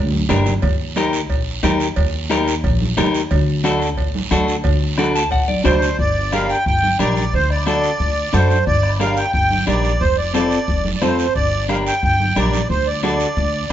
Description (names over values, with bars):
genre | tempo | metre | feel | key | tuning
latin, cumbia | 179 BPM | 4/4 | straight | G minor from 6.0 s | A4 = 440 Hz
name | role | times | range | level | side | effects
upright bass | bass | 0.0-13.7 s | F1 to F#2 | -21 LUFS | equal | none
congas | percussion | 0.1-13.2 s | none | -26 LUFS | right 3 dB | none
clean electric guitar | accompaniment | 0.3-13.7 s | C4 to A5 | -20 LUFS | left 2 dB | none
bombo | percussion | 0.3-13.7 s | none | -24 LUFS | left 1 dB | none
cowbell and timbales | percussion | 0.3-5.8 s | none | -29 LUFS | right 10 dB | none
guiro | percussion | 0.3-13.7 s | none | -30 LUFS | right 6 dB | none
accordion | melody | 5.7-13.7 s | C5 to G5 | -19 LUFS | right 2 dB | light tremolo tuning
room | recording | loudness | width
moderate stone room reverb, RT60 1.0 s | band playing live in one room, nothing above 7.7 kHz | -15 LUFS | side -11 dB against mid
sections
0.0-6.0 A section; 6.0-13.7 B section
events
clean electric guitar fill 5.0-6.0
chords
0.0 Gm; 0.6 Eb; 3.3 D; 6.0 Gm; 7.3 D7; 8.7 Gm; 10.0 F; 11.4 Gm; 12.7 D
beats
0.29 | 0.63 0.96 1.30 1.63 | 1.97 2.30 2.64 2.97 | 3.31 3.64 3.98 4.31 | 4.65 4.98 5.32 5.65 | 5.99 6.32 6.66 7.00 | 7.33 7.67 8.00 8.34 | 8.67 9.01 9.34 9.68 | 10.01 10.35 10.69 11.02 | 11.36 11.69 12.03 12.36 | 12.70 13.03 13.37 13.71